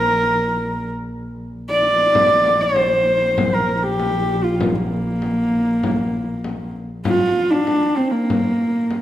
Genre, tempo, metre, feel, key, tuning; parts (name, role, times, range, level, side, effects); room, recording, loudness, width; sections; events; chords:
mongolian traditional, Mongolian folk; 97 BPM; 4/4; straight; Bb gong mode; A4 = 443 Hz
dark horsehead fiddle; melody; 0.0-9.0 s; Bb3 to D5; -17 LUFS; equal
dark double bass; drone; 0.0-7.1 s; Bb1; -26 LUFS; equal
frame drum; percussion; 2.1-9.0 s; -25 LUFS; left 2 dB
wet recital hall reverb, RT60 1.6 s; -16 LUFS; side -12 dB against mid
0.0-7.1 A section; 7.1-9.0 B section